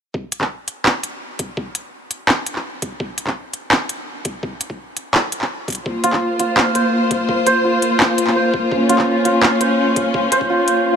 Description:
half-time drum and bass; 168 BPM; 4/4; half-time; A4 = 437 Hz
electronic kick drum; drums; 0.1-10.5 s; -28 LUFS; equal; high-pass filter on kick, small room reverb
industrial drum kit; drums; 0.3-10.8 s; handclaps, hi-hat; -20 LUFS; equal; small room reverb
warm studio string section; sustained chords; 5.9-11.0 s; Bb3 to C5; -17 LUFS; left 2 dB; sidechain pumping
santur; arpeggios; 6.0-11.0 s; F4 to F5; -18 LUFS; right 2 dB; dub echo
swell; sound effects; 10.9-11.0 s; -17 LUFS; left 4 dB
moderate huge ambient reverb, RT60 6.4 s; -16 LUFS; side -7 dB against mid
0.1-11.0 A section
0.1 N.C.; 5.9 Bbm

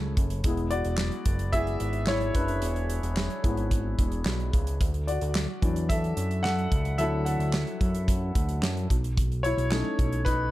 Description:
piano-driven pop; 110 BPM; 4/4; straight; A4 = 440 Hz
warm grand piano; accompaniment; 0.0-10.5 s; F#3 to F#5; -30 LUFS; left 2 dB
fat analog bass; bass; 0.0-10.5 s; E1 to F#2; -29 LUFS; equal
modern studio drum kit; drums; 0.2-10.4 s; handclaps, hi-hat, kick drum, snare drum; -28 LUFS; equal
small room ambience; dark, warm production; -24 LUFS; side -16 dB against mid
0.0-10.5 A section
grand piano solo 0.0-10.5
0.4 E; 4.8 Dadd9; 8.9 B7

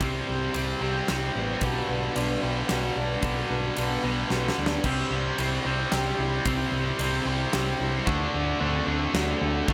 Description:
post-rock; 112 BPM; 3/4; straight; C lydian; A4 = 440 Hz
electric guitar through a small old amp; arpeggios; 0.0-9.7 s; B2 to G4; -35 LUFS; equal; analog chorus, analog delay
tight distorted guitar; riff; 0.0-9.7 s; G2 to D4; -30 LUFS; equal; distortion
hollow-body short-scale fingered electric bass; bass; 0.0-9.7 s; A1 to D2; -33 LUFS; equal
huge arena drum kit; drums; 0.0-9.7 s; crash cymbal, kick drum, ride cymbal, snare drum; -35 LUFS; equal
light reverb; -27 LUFS; mono
0.0-9.7 A section
build-up 0.0-9.7; drum fill 4.3-4.9
0.0 Cmaj7; 1.6 Gmaj7/B; 4.9 C; 8.1 D7

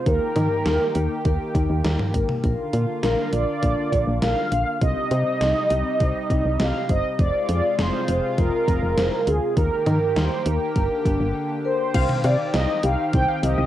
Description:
synth-pop; 101 BPM; 4/4; straight; C minor; A4 = 439 Hz
mellow synth brass; melody; 0.0-13.7 s; Ab4 to G5; -24 LUFS; right 1 dB; chorus, cassette tape, plate reverb
lush unison pad; sustained chords; 0.0-13.7 s; C3 to G4; -28 LUFS; equal; chorus, cassette tape, plate reverb
vibraphone with soft mallets; arpeggios; 0.1-13.6 s; Bb3 to G5; -31 LUFS; left 8 dB; cassette tape, tape echo, plate reverb
solid FM bass; bass; 0.1-13.7 s; F1 to Eb3; -23 LUFS; equal; tube saturation
gated 80s digital drum machine; drums; 0.1-13.6 s; cowbell, crash cymbal, hi-hat, kick drum, snare drum, toms; -25 LUFS; equal; gated reverb, gated reverb snare, overdrive, cassette tape
warbly dusty pluck; second line; 11.9-13.7 s; Eb5 to F5; -31 LUFS; left 7 dB; chorus, cassette tape, tape echo, plate reverb
light reverb; home recording on cassette; -19 LUFS; side -12 dB against mid
0.0-11.9 A section; 11.9-13.7 B section
break 11.3-11.9
0.1 Eb; 2.4 Bb; 4.8 Cm; 7.2 Fm; 9.6 Eb; 10.8 Gm; 11.9 Cm

